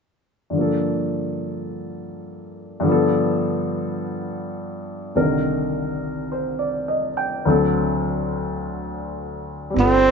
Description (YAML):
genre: jazz ballad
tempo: 52 BPM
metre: 4/4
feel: swing 67% on 8ths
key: G minor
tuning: A4 = 437 Hz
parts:
  - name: warm baby grand piano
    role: accompaniment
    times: 0.5-10.1 s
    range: C2 to G5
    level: -21 LUFS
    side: left 1 dB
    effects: none
  - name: breathy tenor saxophone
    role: melody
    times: 9.8-10.1 s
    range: C4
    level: -14 LUFS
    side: right 3 dB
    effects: none
  - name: upright bass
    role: bass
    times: 9.8-10.1 s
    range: G1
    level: -22 LUFS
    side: right 2 dB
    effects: none
room: moderate echo chamber reverb, RT60 1.9 s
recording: nothing above 7.8 kHz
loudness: -20 LUFS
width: side -5 dB against mid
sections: 0.5-9.8 A section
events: none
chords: 0.5 Gm7; 2.8 G7; 5.1 Cm7; 7.4 D7